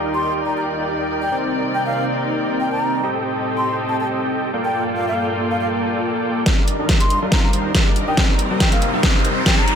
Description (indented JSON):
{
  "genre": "future bass",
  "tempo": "140 BPM",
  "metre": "4/4",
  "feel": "swing 54% on 16ths, half-time",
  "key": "unclear",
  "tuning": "A4 = 440 Hz",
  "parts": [
    { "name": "dark studio string section", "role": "sustained chords", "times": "0.0-9.8 s", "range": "Eb2 to D5", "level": "-28 LUFS", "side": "left 2 dB", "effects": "sidechain pumping" },
    { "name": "dense compressed supersaw", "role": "riff", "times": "0.0-9.8 s", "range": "G3 to G5", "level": "-21 LUFS", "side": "equal", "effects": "sidechain pumping, low-pass filter" },
    { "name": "breathy mellow concert flute", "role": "melody", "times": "0.1-9.8 s", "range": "F5 to C6", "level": "-25 LUFS", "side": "left 1 dB", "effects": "sidechain pumping, dub echo" },
    { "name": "dubstep drum kit", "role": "drums", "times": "6.5-9.8 s", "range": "hi-hat, snare drum", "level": "-20 LUFS", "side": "equal", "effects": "overdrive" },
    { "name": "electronic kick drum", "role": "drums", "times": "6.5-9.6 s", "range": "none", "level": "-18 LUFS", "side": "equal", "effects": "overdrive" },
    { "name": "riser", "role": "sound effects", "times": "7.5-9.8 s", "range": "none", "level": "-26 LUFS", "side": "equal", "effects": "none" }
  ],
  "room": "light reverb, digital ambience",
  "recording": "none",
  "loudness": "-17 LUFS",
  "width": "side -7 dB against mid",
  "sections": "0.0-6.5 A section; 6.5-9.8 B section",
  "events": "build-up 6.5-9.8; drum fill 6.5-9.8; filter sweep on supersaw synth 6.5-9.8; riser 7.5-9.8",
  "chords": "0.0 Ebmaj7; 1.3 Cm9; 3.0 Am7b5; 4.5 Gm9; 6.5 Ebmaj7; 8.2 Cm9"
}